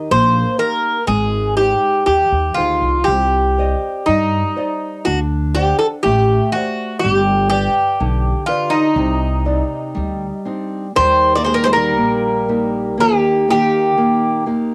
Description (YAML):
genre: fado-style ballad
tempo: 61 BPM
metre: 2/4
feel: rubato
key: Eb major from 11.0 s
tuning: A4 = 441 Hz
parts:
  - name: Greek bouzouki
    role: melody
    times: 0.0-14.4 s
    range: Eb4 to Eb5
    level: -18 LUFS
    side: equal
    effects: cassette tape
  - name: nylon-string guitar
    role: accompaniment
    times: 0.0-14.7 s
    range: C3 to F#5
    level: -25 LUFS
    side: equal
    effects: cassette tape
  - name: upright bass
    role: bass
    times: 0.1-14.6 s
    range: G1 to G2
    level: -23 LUFS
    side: equal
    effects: none
  - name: picked twelve-string acoustic guitar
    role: second line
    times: 11.0-14.4 s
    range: Eb3 to Bb3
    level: -26 LUFS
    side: equal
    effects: cassette tape
room: moderate small room reverb, RT60 0.5 s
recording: home recording on cassette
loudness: -17 LUFS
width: mono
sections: 0.0-11.0 A section; 11.0-14.7 B section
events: none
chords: 0.0 Eb; 1.1 Ab; 3.1 Cmadd9; 5.1 D7; 7.0 G; 9.0 Cmadd9; 11.0 Eb